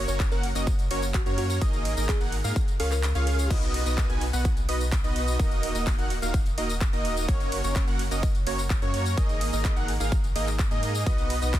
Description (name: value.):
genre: EDM, festival progressive house.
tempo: 127 BPM.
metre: 4/4.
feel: straight.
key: unclear.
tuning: A4 = 440 Hz.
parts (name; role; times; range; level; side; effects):
wide unison lead; arpeggios; 0.0-11.6 s; C#5 to G#5; -34 LUFS; right 1 dB; sidechain pumping, ping-pong delay.
supersaw chords; riff; 0.0-11.6 s; A#3 to G#5; -32 LUFS; right 1 dB; sidechain pumping, ping-pong delay.
saturated sub bass; bass; 0.0-11.6 s; D#1 to G#2; -29 LUFS; equal; sidechain pumping.
bell-like FM electric piano; melody; 0.1-3.5 s; F#4 to C#5; -36 LUFS; equal; chorus, phaser, ping-pong delay.
big-room dance drum kit; drums; 0.1-11.6 s; crash cymbal, handclaps, hi-hat, ride cymbal, tambourine; -34 LUFS; left 1 dB; overdrive.
electronic kick drum; drums; 0.2-11.6 s; none; -25 LUFS; equal; overdrive.
room: digital ambience.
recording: dense, heavily limited modern master.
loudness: -23 LUFS.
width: side -13 dB against mid.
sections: 0.0-3.5 A section; 3.5-11.6 A section.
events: drop 0.0-3.5, 3.5-11.6; kick drops out 3.0-3.5.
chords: 0.0 F#; 1.6 G#sus2; 2.6 C#; 3.5 B; 5.4 D#m; 7.3 F#; 9.2 G#sus2; 11.1 B.